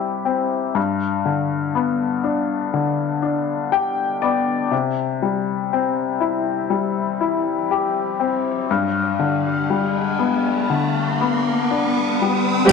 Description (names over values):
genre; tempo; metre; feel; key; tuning
pop ballad; 60 BPM; 4/4; straight; unclear; A4 = 440 Hz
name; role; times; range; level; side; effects
clear upright piano; accompaniment; 0.0-12.7 s; G2 to G5; -19 LUFS; left 6 dB; none
riser; sound effects; 6.6-12.7 s; none; -25 LUFS; right 3 dB; none
room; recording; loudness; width
moderate echo chamber reverb, RT60 1.3 s, small room ambience; 1960s-style stereo; -18 LUFS; side -5 dB against mid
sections
0.0-12.7 A section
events
upright piano fill 3.2-4.7; riser 6.6-12.7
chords
0.0 C; 0.8 G; 4.7 C; 8.7 G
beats
| 0.76 1.75 2.74 3.73 | 4.72 5.71 6.70 7.69 | 8.69 9.69 10.69 11.70 | 12.71